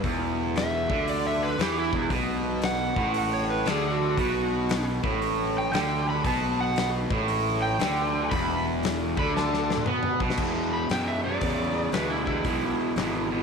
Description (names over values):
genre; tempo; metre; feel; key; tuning
blues rock power trio and southern rock; 116 BPM; 4/4; swing 66% on 8ths; unclear; A4 = 440 Hz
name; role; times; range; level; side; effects
crunchy overdriven guitar; riff; 0.0-13.4 s; E2 to B3; -26 LUFS; right 1 dB; none
fuzz fingered electric bass; bass; 0.0-13.4 s; E1 to B2; -32 LUFS; equal; overdrive
huge arena drum kit; drums; 0.0-13.1 s; crash cymbal, hi-hat, kick drum, snare drum, toms; -31 LUFS; left 4 dB; none
overdriven slide guitar; melody; 0.6-13.4 s; E4 to B5; -30 LUFS; right 1 dB; slapback echo
room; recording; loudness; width
light reverb, small room ambience; 1960s-style stereo; -24 LUFS; side -5 dB against mid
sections
0.0-10.4 A section; 10.4-13.4 B section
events
electric slide guitar solo 0.0-10.4; drum fill 9.3-10.4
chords
0.0 E5; 2.1 B5; 8.3 Bmadd11/E; 9.3 Bm7; 10.4 E7